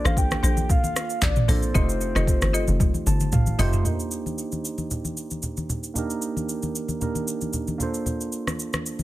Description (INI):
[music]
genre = amapiano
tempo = 114 BPM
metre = 4/4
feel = swing 55% on 16ths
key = C dorian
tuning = A4 = 440 Hz
[part]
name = soft octave-layered synth lead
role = melody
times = 0.0-3.3 s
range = C5 to G5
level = -30 LUFS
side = left 1 dB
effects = chorus, phaser, tape echo
[part]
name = tine electric piano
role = accompaniment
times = 0.0-9.0 s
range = A3 to A5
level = -30 LUFS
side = right 4 dB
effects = wide subtle chorus, low-pass filter
[part]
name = folk marimba with medium hard mallets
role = stabs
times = 0.0-3.7 s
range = D4 to Eb5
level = -32 LUFS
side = left 2 dB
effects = tape echo
[part]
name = tight log drum bass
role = bass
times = 0.0-3.8 s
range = F1 to Bb1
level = -24 LUFS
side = equal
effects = none
[part]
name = smooth R&B drum kit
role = drums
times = 0.1-9.0 s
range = handclaps, hi-hat, kick drum, rim click, shaker, toms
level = -24 LUFS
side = equal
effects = overdrive
[part]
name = congas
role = percussion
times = 0.1-9.0 s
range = none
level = -31 LUFS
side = left 1 dB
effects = none
[sound]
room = digital ambience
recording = none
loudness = -22 LUFS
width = side -16 dB against mid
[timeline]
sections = 0.0-3.9 A section; 3.9-9.0 B section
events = drop 0.0-3.9; drum fill 2.8-3.9; tine electric piano fill 2.8-3.9; filter sweep on tine electric piano 3.9-9.0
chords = 0.0 Bbmaj9; 1.7 F7; 3.9 Cm9; 7.8 Bbmaj9